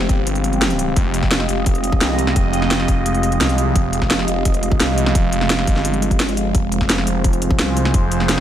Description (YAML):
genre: dark technical drum and bass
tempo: 172 BPM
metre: 4/4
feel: straight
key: F minor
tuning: A4 = 441 Hz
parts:
  - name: sweeping resonant pad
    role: sustained chords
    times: 0.0-8.4 s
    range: F3 to Eb5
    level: -24 LUFS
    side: right 4 dB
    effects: chorus, sidechain pumping
  - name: phased detuned saw bass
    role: bass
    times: 0.0-8.4 s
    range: F1 to C2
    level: -20 LUFS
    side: equal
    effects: phaser, tube saturation, sidechain pumping
  - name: drum and bass drum kit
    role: drums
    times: 0.0-8.4 s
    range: hi-hat, snare drum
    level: -21 LUFS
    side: equal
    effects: studio ambience
  - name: warbly tape-like pad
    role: texture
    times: 0.0-8.4 s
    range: Ab3 to G5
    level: -23 LUFS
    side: left 1 dB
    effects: chorus, built-in reverb, sidechain pumping
  - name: electronic kick drum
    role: drums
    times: 0.1-8.0 s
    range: none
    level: -17 LUFS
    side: equal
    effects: studio ambience
room: light reverb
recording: none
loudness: -15 LUFS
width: side -11 dB against mid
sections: 0.0-8.4 A section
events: none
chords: 0.0 Fmadd9